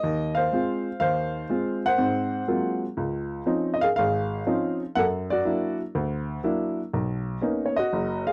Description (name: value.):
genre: solo jazz.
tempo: 122 BPM.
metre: 4/4.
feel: swing 68% on 8ths.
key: Db major.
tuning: A4 = 441 Hz.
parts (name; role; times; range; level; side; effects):
clear upright piano; solo; 0.0-8.3 s; Gb1 to Gb5; -26 LUFS; equal; none.
room: light reverb.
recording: dry, close 1970s-style studio recording.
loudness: -26 LUFS.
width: mono.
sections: 0.0-3.0 A section; 3.0-8.3 B section.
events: none.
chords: 0.0 Ab6; 2.0 Ab13; 3.0 Dbmaj9; 5.0 Gb7b13; 6.9 Cbmaj9.